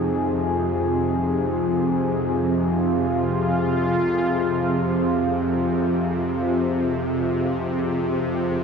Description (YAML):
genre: dark ambient drone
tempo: free time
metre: none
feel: none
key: F minor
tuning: A4 = 440 Hz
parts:
  - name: sweeping resonant pad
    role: sustained chords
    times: 0.0-8.6 s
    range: C3 to Ab4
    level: -21 LUFS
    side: equal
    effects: chorus
  - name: bowed-like drone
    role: drone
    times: 0.0-8.6 s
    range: F2 to C3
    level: -25 LUFS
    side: equal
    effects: built-in reverb
room: wet cathedral reverb, RT60 6.3 s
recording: dark, warm production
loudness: -20 LUFS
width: side -6 dB against mid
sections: 0.0-8.6 A section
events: none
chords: 0.0 Fm7